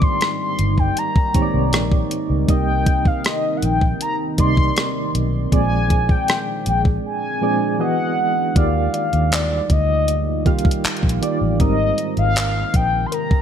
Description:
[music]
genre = contemporary R&B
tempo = 79 BPM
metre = 4/4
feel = straight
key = unclear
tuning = A4 = 440 Hz
[part]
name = mellow horn-like synth lead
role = melody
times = 0.0-13.4 s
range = D5 to C6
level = -22 LUFS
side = left 2 dB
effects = chorus, tape echo
[part]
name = soft electric-piano-like synth keys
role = accompaniment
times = 0.0-13.4 s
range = Ab2 to F5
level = -24 LUFS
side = right 3 dB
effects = chorus, tremolo
[part]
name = deep dark ambient pad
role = sustained chords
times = 0.0-13.4 s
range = C3 to Bb4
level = -27 LUFS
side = equal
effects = chorus, built-in reverb, sidechain pumping
[part]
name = vintage muted fingered electric bass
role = bass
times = 0.0-13.0 s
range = G1 to Eb2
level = -21 LUFS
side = equal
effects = none
[part]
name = gated 80s digital drum machine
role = drums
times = 0.0-13.4 s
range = handclaps, hi-hat, kick drum, rim click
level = -18 LUFS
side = equal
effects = gated reverb
[part]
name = soft round pluck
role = texture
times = 8.9-13.4 s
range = Bb4 to D5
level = -29 LUFS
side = left 6 dB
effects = chorus
[sound]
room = light reverb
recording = none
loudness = -16 LUFS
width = side -8 dB against mid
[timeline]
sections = 0.0-8.6 A section; 8.6-13.4 B section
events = drums muted 7.0-8.6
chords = 0.0 Abmaj9#11; 2.5 Cm9; 5.5 Bb9; 7.8 Emaj9; 8.6 Ebmaj9; 11.6 Abmaj9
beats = 0.21 0.97 1.73 | 2.48 3.24 4.00 4.76 | 5.52 6.28 7.04 7.80 | 8.56 9.32 10.08 10.84 | 11.60 12.36 13.12

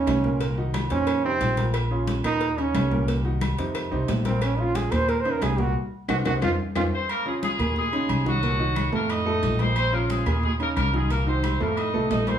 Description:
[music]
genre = latin, salsa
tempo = 180 BPM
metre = 4/4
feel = straight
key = Bb minor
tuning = A4 = 439 Hz
[part]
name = bright trombone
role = melody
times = 0.0-6.8 s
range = C4 to C5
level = -25 LUFS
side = right 4 dB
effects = none
[part]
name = clear concert grand piano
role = accompaniment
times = 0.0-12.4 s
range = A2 to C5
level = -28 LUFS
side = right 1 dB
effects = none
[part]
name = upright bass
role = bass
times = 0.0-12.4 s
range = Bb1 to F2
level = -26 LUFS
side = equal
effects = none
[part]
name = claves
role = percussion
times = 0.1-11.9 s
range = none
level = -38 LUFS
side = left 6 dB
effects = none
[part]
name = congas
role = percussion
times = 0.1-12.4 s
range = none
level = -33 LUFS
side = left 4 dB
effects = none
[part]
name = cowbell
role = percussion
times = 0.1-6.8 s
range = none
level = -36 LUFS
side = left 6 dB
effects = none
[part]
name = timbales and agogo bells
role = percussion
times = 0.1-12.4 s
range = none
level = -34 LUFS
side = right 4 dB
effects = none
[part]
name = clear horn section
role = melody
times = 6.9-12.4 s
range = Gb3 to Eb5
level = -27 LUFS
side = equal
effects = tape echo
[sound]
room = moderate studio reverb, RT60 0.5 s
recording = studio reverb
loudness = -22 LUFS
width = side -9 dB against mid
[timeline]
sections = 0.0-7.1 A section; 7.1-12.4 B section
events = trombone solo 0.0-7.1; drum fill 5.8-7.1; band accent 5.8-7.1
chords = 0.4 Cm7b5; 1.1 F5; 1.7 Bbm; 2.4 Eb5; 3.1 Cm7b5; 3.7 F5; 4.4 Bbm; 5.1 Eb5; 5.8 Cm7b5; 6.4 F5; 7.1 Bbm7; 7.8 Ebm7; 8.4 Cm7b5; 9.1 F7; 9.8 Bbm7; 10.4 Ebm7; 11.1 Cm7b5; 11.8 F7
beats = 0.07 | 0.41 0.74 1.07 1.41 | 1.74 2.08 2.41 2.75 | 3.08 3.41 3.75 4.08 | 4.42 4.75 5.08 5.42 | 5.75 6.09 6.42 6.76 | 7.09 7.42 7.76 8.09 | 8.43 8.76 9.10 9.43 | 9.77 10.10 10.43 10.77 | 11.10 11.44 11.77 12.11

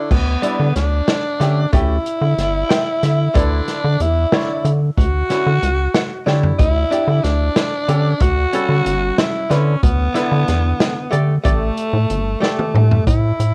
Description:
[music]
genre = progressive instrumental, band music in an uneven meter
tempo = 185 BPM (eighths)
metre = 5/8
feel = straight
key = unclear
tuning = A4 = 440 Hz
[part]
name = raspy alto saxophone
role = second line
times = 0.0-13.5 s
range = A3 to F#4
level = -23 LUFS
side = equal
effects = cassette tape, analog delay, plate reverb
[part]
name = archtop guitar, miked and amplified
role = accompaniment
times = 0.0-13.1 s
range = D3 to G5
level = -25 LUFS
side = equal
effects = cassette tape, plate reverb
[part]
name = rubbery square bass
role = bass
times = 0.1-13.5 s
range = G1 to D3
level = -19 LUFS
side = equal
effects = none
[part]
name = swinging big-band drum kit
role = drums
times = 0.1-13.5 s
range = crash cymbal, hi-hat, kick drum, snare drum, toms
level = -21 LUFS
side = equal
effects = cassette tape
[sound]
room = light reverb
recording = home recording on cassette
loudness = -17 LUFS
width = mono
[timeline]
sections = 0.1-13.1 A section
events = hollow-body jazz guitar fill 2.4-3.4, 5.6-6.6; drum fill 6.3-6.6, 12.4-13.1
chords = 0.1 Em7/D; 1.7 A7; 3.4 Bm11/D; 5.0 Dmaj9; 6.6 Em7/D; 8.2 A7; 9.8 G69/D; 11.5 A7sus4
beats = | 0.11 0.44 0.76 1.09 1.41 | 1.74 2.06 2.39 2.71 3.03 | 3.36 3.68 4.01 4.33 4.65 | 4.98 5.30 5.63 5.95 6.27 | 6.60 6.92 7.24 7.57 7.89 | 8.21 8.54 8.86 9.19 9.51 | 9.83 10.16 10.48 10.80 11.13 | 11.45 11.78 12.10 12.42 12.75 | 13.07 13.39

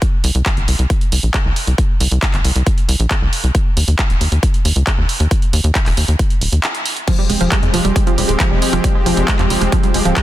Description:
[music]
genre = uplifting trance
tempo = 136 BPM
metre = 4/4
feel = straight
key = F minor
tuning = A4 = 441 Hz
[part]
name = electronic kick drum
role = drums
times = 0.0-10.2 s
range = none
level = -16 LUFS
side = equal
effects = none
[part]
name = punchy analog drum machine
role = drums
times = 0.0-10.2 s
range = crash cymbal, handclaps, hi-hat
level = -20 LUFS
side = right 1 dB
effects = none
[part]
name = tight sequencer bass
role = bass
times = 0.2-10.1 s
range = Eb1 to F2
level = -16 LUFS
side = equal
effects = sidechain pumping
[part]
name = supersaw pad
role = sustained chords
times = 7.1-10.2 s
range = F3 to G4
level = -20 LUFS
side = left 1 dB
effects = sidechain pumping
[part]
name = wide unison pluck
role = arpeggios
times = 7.1-10.2 s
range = F3 to Ab3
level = -19 LUFS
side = right 3 dB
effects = sidechain pumping, ping-pong delay
[sound]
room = light reverb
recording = dense, heavily limited modern master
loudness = -13 LUFS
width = side -14 dB against mid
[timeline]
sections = 0.0-10.2 A section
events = break 6.6-7.1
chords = 0.0 N.C.; 7.1 Fmadd9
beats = | 0.02 0.46 0.90 1.34 | 1.78 2.22 2.67 3.11 | 3.55 3.99 4.43 4.87 | 5.31 5.75 6.20 6.64 | 7.08 7.52 7.96 8.40 | 8.84 9.28 9.72 10.16

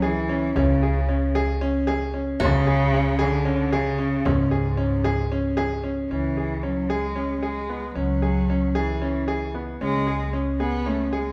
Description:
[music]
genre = contemporary instrumental, chamber music in an uneven meter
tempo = 227 BPM (eighths)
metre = 7/8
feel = straight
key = C# phrygian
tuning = A4 = 436 Hz
[part]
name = rich cello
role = melody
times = 0.0-11.3 s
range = G#2 to B3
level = -28 LUFS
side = equal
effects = none
[part]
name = bright grand piano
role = arpeggios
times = 0.0-11.3 s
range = B3 to G#4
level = -27 LUFS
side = equal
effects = none
[part]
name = upright bass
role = bass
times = 0.0-11.3 s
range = C#2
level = -29 LUFS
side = equal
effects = none
[part]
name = frame drum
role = percussion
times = 0.0-6.0 s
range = none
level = -34 LUFS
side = equal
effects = none
[part]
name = bluegrass banjo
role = texture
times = 2.4-3.8 s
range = F#4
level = -35 LUFS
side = equal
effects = none
[sound]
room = wet recital hall reverb, RT60 1.5 s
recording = heard from further back in the room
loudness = -23 LUFS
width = mono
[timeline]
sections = 0.0-6.1 A section; 6.1-11.3 B section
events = none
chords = 0.0 C#5; 6.1 C#m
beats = 0.04 0.30 | 0.56 0.83 1.09 1.36 1.62 1.88 2.15 | 2.41 2.68 2.94 3.21 3.47 3.73 4.00 | 4.26 4.53 4.79 5.05 5.32 5.58 5.85 | 6.11 6.38 6.64 6.90 7.17 7.43 7.70 | 7.96 8.22 8.49 8.75 9.02 9.28 9.55 | 9.81 10.07 10.34 10.60 10.87 11.13

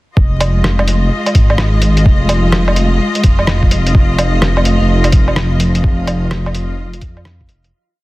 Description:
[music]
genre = future garage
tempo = 127 BPM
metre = 4/4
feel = swing 64% on 16ths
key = F minor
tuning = A4 = 440 Hz
[part]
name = warm studio string section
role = sustained chords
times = 0.2-7.7 s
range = F3 to Eb5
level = -20 LUFS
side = left 1 dB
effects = sidechain pumping
[part]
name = swelling detuned saw bass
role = bass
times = 0.2-7.7 s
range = F1 to F2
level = -14 LUFS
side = equal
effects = sidechain pumping
[part]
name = electronic kick drum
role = drums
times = 0.2-7.5 s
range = none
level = -10 LUFS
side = equal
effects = studio reverb
[part]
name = backwards swelling texture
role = texture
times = 1.2-7.7 s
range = F4 to F5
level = -28 LUFS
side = equal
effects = built-in reverb
[part]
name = lo-fi sampler-style drum kit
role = drums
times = 0.4-7.7 s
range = hi-hat, rim click, woodblock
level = -18 LUFS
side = equal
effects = studio reverb, soft clipping on snare
[sound]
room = digital ambience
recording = dense, heavily limited modern master, vinyl crackle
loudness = -10 LUFS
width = side -19 dB against mid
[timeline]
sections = 0.2-7.7 groove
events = fade-out 5.2-7.7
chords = 0.2 Fm7; 3.9 Ebsus2/F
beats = | 0.17 0.64 1.11 1.58 | 2.06 2.53 3.00 3.48 | 3.95 4.42 4.89 5.37 | 5.84 6.31 6.78 7.25

